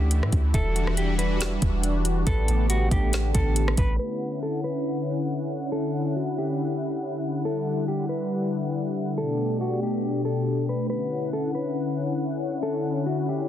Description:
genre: hip hop, atmospheric cloud-rap.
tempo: 139 BPM.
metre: 4/4.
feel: half-time.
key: D major.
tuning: A4 = 439 Hz.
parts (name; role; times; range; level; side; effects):
mellow electric guitar; melody; 0.0-13.5 s; F#4 to B4; -31 LUFS; equal; warbly pitch drift, digital delay.
warm analog pad; sustained chords; 0.0-13.5 s; B2 to F#5; -26 LUFS; left 2 dB; chorus, sidechain pumping.
warbly lo-fi synth keys; arpeggios; 0.0-4.0 s; D3 to D6; -37 LUFS; right 3 dB; chorus, digital delay.
soft 808-style bass; bass; 0.0-4.0 s; E1 to A2; -24 LUFS; equal; none.
smooth R&B drum kit; drums; 0.1-3.9 s; hi-hat, kick drum, rim click, snare drum; -26 LUFS; equal; soft clipping on snare.
room: digital ambience.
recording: dense, heavily limited modern master, low-pass filter.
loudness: -23 LUFS.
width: side -11 dB against mid.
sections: 0.0-4.0 A section; 4.0-13.5 B section.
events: none.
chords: 0.0 Dmaj9; 0.5 Em9; 2.3 A9sus4; 4.0 Dmaj9; 7.4 Em9; 9.2 A9sus4; 10.9 Dmaj9.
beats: 0.11 | 0.54 0.97 1.40 1.84 | 2.27 2.70 3.13 3.56 | 3.99 4.43 4.86 5.29 | 5.72 6.15 6.58 7.02 | 7.45 7.88 8.31 8.74 | 9.17 9.61 10.04 10.47 | 10.90 11.33 11.76 12.20 | 12.63 13.06.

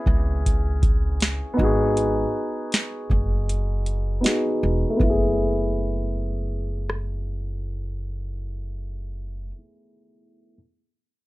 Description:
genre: lo-fi hip hop.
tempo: 79 BPM.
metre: 4/4.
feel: swing 62% on 16ths.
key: F# dorian.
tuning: A4 = 440 Hz.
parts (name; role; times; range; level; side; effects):
felt-muted upright piano; accompaniment; 0.0-10.6 s; A3 to G#4; -25 LUFS; equal; low-pass filter, plate reverb.
upright bass; bass; 0.1-9.5 s; E1 to C#2; -26 LUFS; equal; none.
booming analog drum machine; drums; 0.1-7.1 s; hi-hat, kick drum, rim click, snare drum; -22 LUFS; equal; none.
room: light reverb.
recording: none.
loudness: -21 LUFS.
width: side -19 dB against mid.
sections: 0.0-5.0 A section; 5.0-8.0 B section.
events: filter sweep on felt piano 0.0-5.0; kick muted 3.5-5.0.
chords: 0.0 Amaj7 (rootless); 1.6 G#m7; 5.0 F#m11.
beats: 0.44 1.20 | 1.96 2.72 3.48 4.24 | 5.00 5.76 6.52 7.28.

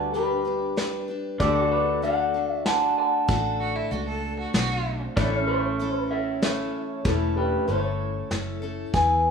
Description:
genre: honky-tonk and classic country.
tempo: 96 BPM.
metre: 3/4.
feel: straight.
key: unclear.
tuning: A4 = 440 Hz.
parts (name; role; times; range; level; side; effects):
electric guitar through a small old amp; melody; 0.0-9.3 s; E4 to A5; -24 LUFS; left 1 dB; none.
picked steel-string acoustic guitar; accompaniment; 0.0-9.3 s; A2 to B4; -32 LUFS; left 2 dB; none.
pedal steel guitar; sustained chords; 0.0-8.9 s; G3 to B4; -32 LUFS; right 2 dB; none.
vintage muted fingered electric bass; bass; 0.0-9.3 s; E1 to E2; -30 LUFS; equal; none.
vintage brush drum kit; drums; 0.1-9.1 s; hi-hat, kick drum, snare drum; -27 LUFS; equal; none.
rich fiddle; second line; 3.6-5.0 s; E4 to A4; -31 LUFS; right 3 dB; none.
room: light reverb.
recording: rough home demo mix, small room ambience.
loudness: -22 LUFS.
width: side -6 dB against mid.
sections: 0.0-8.9 A section.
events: none.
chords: 0.0 G; 1.4 D; 5.2 A.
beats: 0.14 0.77 | 1.40 2.03 2.66 | 3.29 3.91 4.54 | 5.17 5.79 6.42 | 7.05 7.68 8.31 | 8.94.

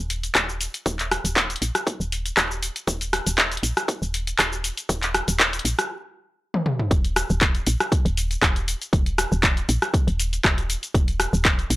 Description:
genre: afro house.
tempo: 119 BPM.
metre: 4/4.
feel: straight.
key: unclear.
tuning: A4 = 440 Hz.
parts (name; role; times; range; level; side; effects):
woody FM bass; bass; 0.0-11.8 s; Eb1 to Bb1; -26 LUFS; equal; sidechain pumping.
house drum kit; drums; 0.1-11.8 s; handclaps, hi-hat, rim click, shaker, toms; -22 LUFS; equal; none.
electronic kick drum; drums; 0.4-11.6 s; none; -22 LUFS; equal; high-pass filter on kick, high-pass filter on room.
room: little or no reverb.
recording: dry, gritty hardware recording.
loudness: -20 LUFS.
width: side -18 dB against mid.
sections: 0.0-6.9 A section; 6.9-11.8 B section.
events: build-up 0.0-6.9; stop 5.9-6.9; drum fill 6.5-6.9; drop 6.9-11.8.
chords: none.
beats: 0.36 | 0.86 1.37 1.87 2.38 | 2.88 3.38 3.89 4.39 | 4.90 5.40 5.91 6.41 | 6.91 7.42 7.92 8.43 | 8.93 9.43 9.94 10.44 | 10.95 11.45.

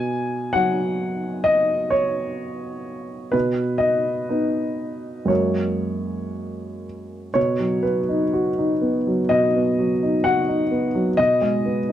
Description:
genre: neoclassical minimalist piano.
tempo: 57-66 BPM.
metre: 4/4.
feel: rubato.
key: B major.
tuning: A4 = 440 Hz.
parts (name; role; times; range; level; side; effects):
warm upright piano; solo; 0.0-11.9 s; F#2 to G#5; -20 LUFS; equal; none.
room: light reverb.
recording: dark, warm production.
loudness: -19 LUFS.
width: side -11 dB against mid.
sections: 0.0-7.4 A section; 7.4-11.9 A section.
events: none.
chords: 0.0 B5; 3.3 B; 5.3 F#add9; 7.4 B; 11.2 G#m/B.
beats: 0.55 1.46 2.40 | 3.34 4.29 5.30 6.32 | 7.36 8.33 9.30 10.24 | 11.18.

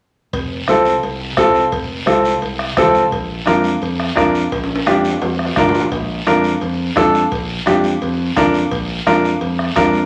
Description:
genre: latin, cumbia.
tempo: 172 BPM.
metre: 4/4.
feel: straight.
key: unclear.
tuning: A4 = 439 Hz.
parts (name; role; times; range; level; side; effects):
modern bright fingered electric bass; bass; 0.3-10.0 s; F1 to F2; -26 LUFS; equal; none.
bombo; percussion; 0.3-9.9 s; none; -26 LUFS; equal; none.
congas; percussion; 0.3-9.9 s; none; -29 LUFS; equal; none.
cowbell and timbales; percussion; 0.3-9.9 s; none; -29 LUFS; equal; none.
guiro; percussion; 0.3-10.1 s; none; -31 LUFS; equal; none.
warm upright piano; accompaniment; 0.7-10.0 s; C4 to Bb4; -17 LUFS; equal; none.
room: wet large studio reverb, RT60 0.9 s.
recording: none.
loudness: -16 LUFS.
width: mono.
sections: 0.3-10.1 A section.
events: drum fill 4.5-5.9.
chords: 0.3 F; 3.1 Bb.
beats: | 0.33 0.68 1.03 1.38 | 1.73 2.08 2.43 2.78 | 3.13 3.48 3.83 4.17 | 4.52 4.87 5.22 5.57 | 5.92 6.27 6.62 6.97 | 7.32 7.67 8.02 8.37 | 8.71 9.06 9.41 9.76.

